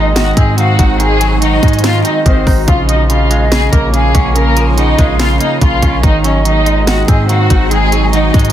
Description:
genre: hip hop, trap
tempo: 143 BPM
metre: 4/4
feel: half-time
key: unclear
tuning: A4 = 440 Hz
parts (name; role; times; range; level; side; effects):
- warm studio violin section; melody; 0.0-8.5 s; Ab3 to Gb5; -16 LUFS; left 2 dB; low-pass filter, ping-pong delay
- breathy mellow pan flute; second line; 0.0-8.5 s; Eb5 to Ab5; -22 LUFS; equal; ping-pong delay
- electric guitar with an envelope filter; accompaniment; 0.0-8.5 s; Db3 to Eb4; -18 LUFS; right 4 dB; low-pass filter
- granular cloud pad; sustained chords; 0.0-8.5 s; Ab3 to Db5; -21 LUFS; right 2 dB; built-in reverb
- warm 808-style bass; bass; 0.0-8.5 s; Ab1 to Ab2; -13 LUFS; equal; none
- trap drum kit; drums; 0.2-8.5 s; hi-hat, kick drum, snare drum; -13 LUFS; equal; none
room: little or no reverb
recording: dense, heavily limited modern master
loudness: -9 LUFS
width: side -11 dB against mid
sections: 0.0-8.5 A section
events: none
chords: 0.0 Ab7; 2.7 Bbm7; 6.0 Ab7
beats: 0.16 0.58 | 1.00 1.42 1.84 2.26 | 2.68 3.10 3.52 3.94 | 4.36 4.78 5.20 5.62 | 6.03 6.45 6.87 7.29 | 7.71 8.13

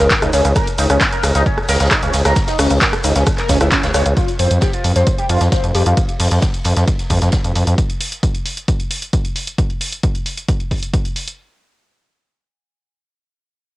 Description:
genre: driving peak-time techno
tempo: 133 BPM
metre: 4/4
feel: straight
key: unclear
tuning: A4 = 444 Hz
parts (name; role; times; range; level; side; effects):
- overdriven synth lead; riff; 0.0-6.0 s; Db4 to Db5; -20 LUFS; equal; phaser, tube saturation, analog chorus, sidechain pumping, cassette tape, analog delay
- gritty driven synth bass; bass; 0.0-7.7 s; Db2 to F2; -14 LUFS; equal; distortion, sidechain pumping
- techno drum kit; drums; 0.0-11.4 s; handclaps, hi-hat, ride cymbal, rim click, shaker; -20 LUFS; equal; cassette tape, sidechain pumping on hats, sidechain pumping on cymbals, sidechain pumping on perc
- electronic kick drum; drums; 0.1-11.0 s; none; -18 LUFS; equal; cassette tape
- swinging big-band drum kit; drums; 0.1-7.7 s; hi-hat, ride cymbal, snare drum; -30 LUFS; equal; none
room: light reverb, small room reverb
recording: home recording on cassette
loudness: -14 LUFS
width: side -18 dB against mid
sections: 0.0-4.2 A section; 4.2-11.4 B section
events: drop 0.0-4.2; band accent 3.7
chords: 0.0 N.C.; 4.2 F5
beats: 0.11 | 0.56 1.01 1.46 1.91 | 2.36 2.81 3.27 3.72 | 4.17 4.62 5.07 5.52 | 5.97 6.42 6.88 7.33 | 7.78 8.23 8.68 9.13 | 9.58 10.03 10.48 10.94

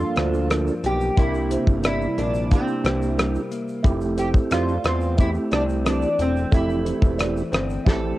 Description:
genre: indie pop, bedroom pop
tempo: 90 BPM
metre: 4/4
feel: straight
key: unclear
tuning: A4 = 440 Hz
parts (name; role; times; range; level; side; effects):
- lap resonator guitar; melody; 0.0-8.2 s; C4 to A4; -26 LUFS; equal; analog chorus, cassette tape
- clean electric guitar; accompaniment; 0.0-8.2 s; G2 to E4; -30 LUFS; left 3 dB; analog chorus, vibrato effect, cassette tape
- percussive tonewheel organ; accompaniment; 0.0-8.2 s; A3 to A4; -26 LUFS; right 3 dB; fast rotary speaker, cassette tape
- fat analog bass; bass; 0.0-8.1 s; E1 to F2; -26 LUFS; equal; none
- damped 70s drum kit; drums; 0.0-8.0 s; hi-hat, kick drum, rim click, shaker, snare drum; -20 LUFS; equal; cassette tape
- kalimba; second line; 0.2-7.7 s; A4 to D5; -32 LUFS; right 2 dB; lush chorus, cassette tape, analog delay
room: light reverb, small room ambience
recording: home recording on cassette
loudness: -19 LUFS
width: side -16 dB against mid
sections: 0.0-8.2 A section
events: drum fill 7.9-8.2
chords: 0.0 Gm7; 1.2 C7; 3.8 Fmaj7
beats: 0.51 | 1.17 1.84 2.51 3.18 | 3.85 4.52 5.19 5.85 | 6.52 7.19 7.86

